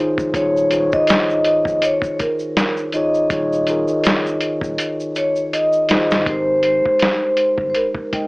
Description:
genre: lo-fi hip hop.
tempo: 81 BPM.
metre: 4/4.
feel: swing 56% on 16ths.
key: Ab major.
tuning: A4 = 440 Hz.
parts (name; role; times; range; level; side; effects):
mellow tine electric piano; accompaniment; 0.0-8.3 s; Eb3 to G5; -21 LUFS; equal; medium stereo tremolo, cassette tape, low-pass filter.
soft dub sub bass; bass; 0.2-7.7 s; Eb1 to Ab1; -34 LUFS; equal; none.
lo-fi sampler-style drum kit; drums; 0.2-8.3 s; hi-hat, kick drum, snare drum; -20 LUFS; equal; none.
tube shaker; percussion; 0.2-6.3 s; none; -40 LUFS; right 1 dB; none.
vibraphone with soft mallets; melody; 0.3-8.3 s; Bb4 to Eb5; -18 LUFS; equal; low-pass filter.
room: moderate studio reverb, RT60 0.5 s.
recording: cassette tape, small speaker sound.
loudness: -15 LUFS.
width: side -28 dB against mid.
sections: 0.0-6.3 A section; 6.3-8.3 B section.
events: drum fill 4.8-6.3.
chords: 0.0 Eb7sus4; 6.3 Abmaj7.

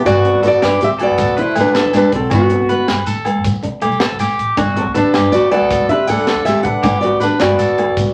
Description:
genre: highlife guitar band.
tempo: 106 BPM (dotted quarters).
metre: 12/8.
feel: straight.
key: G major.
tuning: A4 = 441 Hz.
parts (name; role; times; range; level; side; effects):
fingerpicked steel-string acoustic guitar; melody; 0.0-8.1 s; B3 to F#5; -16 LUFS; equal; none.
growling trombone; second line; 0.0-8.1 s; D3 to D4; -27 LUFS; equal; none.
electric guitar at the edge of break-up; arpeggios; 0.0-7.9 s; F#4 to B4; -24 LUFS; equal; none.
flamenco guitar; accompaniment; 0.1-8.1 s; A3 to D4; -26 LUFS; equal; none.
upright bass; bass; 0.1-8.1 s; F#1 to D3; -26 LUFS; equal; none.
tight funk drum kit; drums; 0.1-8.1 s; hi-hat, kick drum, snare drum; -25 LUFS; equal; none.
agogo bells; percussion; 0.1-8.0 s; none; -27 LUFS; equal; none.
congas; percussion; 0.1-8.1 s; none; -27 LUFS; equal; none.
shekere; percussion; 0.1-8.1 s; none; -29 LUFS; equal; none.
room: wet studio ambience, RT60 0.4 s.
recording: vinyl crackle.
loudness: -15 LUFS.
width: mono.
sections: 0.1-8.1 A section.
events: none.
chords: 0.1 Gmaj7; 1.2 D6; 2.3 Gmaj7; 3.5 Csus2; 4.6 Gmaj7; 5.7 D6; 6.8 Gmaj7.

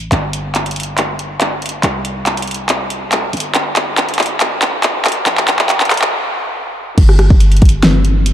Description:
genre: future bass.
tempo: 140 BPM.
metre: 4/4.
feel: half-time.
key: unclear.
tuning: A4 = 440 Hz.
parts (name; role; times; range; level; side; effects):
warm 808-style bass; bass; 0.0-8.3 s; G1 to C2; -17 LUFS; equal; sidechain pumping.
pop drum kit; drums; 0.1-8.3 s; crash cymbal, handclaps, hi-hat, rim click, snare drum; -14 LUFS; equal; high-pass filter on hats, high-pass filter on snare, high-pass filter on cymbals, high-pass filter on room.
electronic kick drum; drums; 7.0-7.7 s; none; -8 LUFS; equal; none.
room: moderate huge ambient reverb, RT60 4.3 s.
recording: dark, warm production, high-pass filter.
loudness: -12 LUFS.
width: side -11 dB against mid.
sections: 0.0-7.0 A section; 7.0-8.3 B section.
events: build-up 0.0-7.0; drum fill 0.1-6.1; stop 6.1-7.0; drop 7.0-8.3.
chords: none.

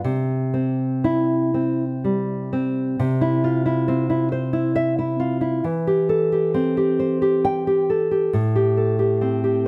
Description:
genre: romantic piece for solo classical guitar.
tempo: 60-69 BPM.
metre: 3/4.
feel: rubato.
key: C major.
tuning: A4 = 440 Hz.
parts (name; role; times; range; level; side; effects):
nylon-string guitar; solo; 0.0-9.7 s; A2 to G5; -21 LUFS; equal; none.
room: moderate recital hall reverb, RT60 1.5 s.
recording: close, detailed microphones.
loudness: -21 LUFS.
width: mono.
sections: 0.0-3.0 A section; 3.0-9.7 B section.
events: none.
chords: 0.0 C; 5.6 C/E; 8.3 Am7.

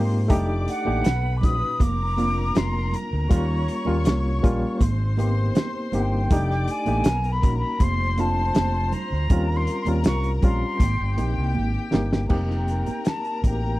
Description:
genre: lush 1970s-style soul.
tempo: 80 BPM.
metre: 4/4.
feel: straight.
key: unclear.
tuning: A4 = 443 Hz.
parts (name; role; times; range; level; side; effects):
muted studio string section; second line; 0.0-13.8 s; G4 to D6; -34 LUFS; left 3 dB; none.
barky reed electric piano; accompaniment; 0.0-13.8 s; A#2 to G4; -27 LUFS; left 1 dB; overdrive, fast tremolo.
overdriven fingered electric bass; bass; 0.0-13.8 s; F1 to Ab2; -24 LUFS; equal; none.
warm soul drum kit; drums; 0.3-13.6 s; crash cymbal, hi-hat, kick drum, snare drum; -21 LUFS; equal; none.
congas; percussion; 0.3-13.4 s; none; -33 LUFS; right 6 dB; none.
breathy concert flute; melody; 0.7-13.8 s; Gb5 to D#6; -28 LUFS; left 1 dB; none.
room: little or no reverb.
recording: none.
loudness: -20 LUFS.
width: side -18 dB against mid.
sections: 0.0-12.3 A section; 12.3-13.8 B section.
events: drum fill 11.6-12.3.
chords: 0.3 F13; 1.1 Bmaj9; 1.8 Bbadd9/F; 3.3 Eb13; 4.8 Abmaj7; 6.3 F13; 7.1 Bmaj9; 7.8 F6; 9.3 Eb13; 10.8 Abmaj7; 12.3 F9sus4.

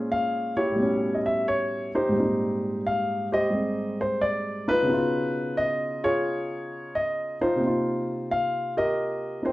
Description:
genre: solo jazz.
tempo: 88 BPM.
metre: 4/4.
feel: swing 68% on 8ths.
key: unclear.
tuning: A4 = 440 Hz.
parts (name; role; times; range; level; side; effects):
warm grand piano; solo; 0.0-9.5 s; Ab2 to G5; -24 LUFS; equal; none.
room: light reverb.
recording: close, detailed microphones.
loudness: -23 LUFS.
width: side -17 dB against mid.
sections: 0.0-9.5 A section.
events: none.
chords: 0.0 Bbm9; 0.8 A9; 2.1 Abmaj9; 4.9 Db9; 7.6 Cm7.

